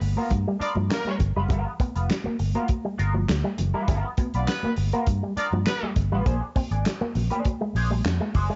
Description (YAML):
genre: funk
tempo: 101 BPM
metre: 4/4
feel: straight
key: unclear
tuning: A4 = 440 Hz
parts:
  - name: electric guitar with an envelope filter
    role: riff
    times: 0.0-8.6 s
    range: F3 to C4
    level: -33 LUFS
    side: equal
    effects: tremolo
  - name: vintage muted fingered electric bass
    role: bass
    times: 0.0-8.5 s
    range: F1 to G2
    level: -27 LUFS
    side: equal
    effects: none
  - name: warm soul drum kit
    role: drums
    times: 0.0-8.5 s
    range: handclaps, hi-hat, kick drum, snare drum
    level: -29 LUFS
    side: equal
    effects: none
  - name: clean electric guitar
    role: accompaniment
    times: 0.2-8.6 s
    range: B3 to D5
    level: -34 LUFS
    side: equal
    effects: wah, analog chorus
  - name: congas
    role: percussion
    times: 0.2-8.5 s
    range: none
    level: -37 LUFS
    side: equal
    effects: none
  - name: clear horn section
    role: second line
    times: 0.6-5.9 s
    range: A#3 to D5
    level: -34 LUFS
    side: equal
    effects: none
room: light reverb, small room ambience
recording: dark, warm production, nothing above 7.8 kHz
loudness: -25 LUFS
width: mono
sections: 0.0-8.6 A section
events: none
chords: 0.0 G7#9; 6.3 Bb9